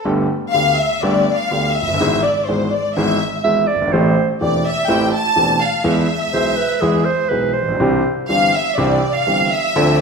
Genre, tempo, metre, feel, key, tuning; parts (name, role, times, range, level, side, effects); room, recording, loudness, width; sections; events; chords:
tango; 124 BPM; 4/4; rubato; A4 = 440 Hz
rich studio violin section; second line; 0.0-10.0 s; C5 to A5; -18 LUFS; left 1 dB
warm concert grand piano; accompaniment; 0.0-10.0 s; E1 to A4; -18 LUFS; equal
clear clarinet; second line; 3.4-8.2 s; G#4 to E5; -19 LUFS; right 5 dB
wet recital hall reverb, RT60 1.4 s; minimal, uncompressed stereo recording; -14 LUFS; side -5 dB against mid
0.1-10.0 A section
violin section solo 0.1-10.0
0.1 Gadd9; 2.0 E/G#; 3.9 Am7; 5.9 E; 7.8 Cadd9